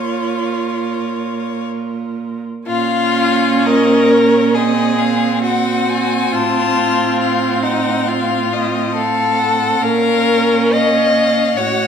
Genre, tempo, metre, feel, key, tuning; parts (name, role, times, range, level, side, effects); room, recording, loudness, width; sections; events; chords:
classical, slow romantic movement for string quartet; 58-73 BPM; 4/4; rubato; Bb minor; A4 = 440 Hz
clear violin; melody; 0.0-11.9 s; Db5 to A5; -22 LUFS; left 9 dB
warm violin; second line; 0.0-11.9 s; Eb4 to Eb5; -16 LUFS; left 3 dB
rich viola; accompaniment; 0.0-11.9 s; C4 to Gb4; -20 LUFS; right 4 dB
clear cello; bass; 0.0-11.9 s; A2 to Bb2; -20 LUFS; right 7 dB
wet recital hall reverb, RT60 1.7 s; -13 LUFS; side -7 dB against mid
0.0-2.7 A section; 2.7-11.9 A section
0.0 Bbm; 4.6 Ab13/Bb; 6.3 F/A; 9.8 Bbm